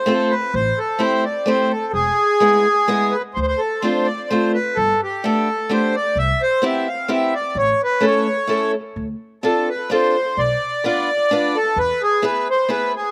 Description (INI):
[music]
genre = musette waltz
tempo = 129 BPM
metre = 3/4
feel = straight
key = A minor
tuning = A4 = 440 Hz
[part]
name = accordion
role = melody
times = 0.0-13.1 s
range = G4 to F5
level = -20 LUFS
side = equal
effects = slapback echo
[part]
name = picked old ladder-braced acoustic guitar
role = accompaniment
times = 0.1-12.9 s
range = G#3 to B4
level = -23 LUFS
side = equal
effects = slapback echo
[part]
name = upright bass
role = bass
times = 0.5-11.9 s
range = E1 to E2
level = -28 LUFS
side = equal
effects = none
[sound]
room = light reverb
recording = recorded outdoors, with no room sound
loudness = -19 LUFS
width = mono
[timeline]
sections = 0.0-13.1 A section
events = none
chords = 0.0 F; 0.5 Am7; 1.9 E; 3.4 Dm7; 4.8 Gadd9; 6.2 Cmaj7; 7.6 A; 9.0 Dm7; 10.4 Bdim; 11.8 E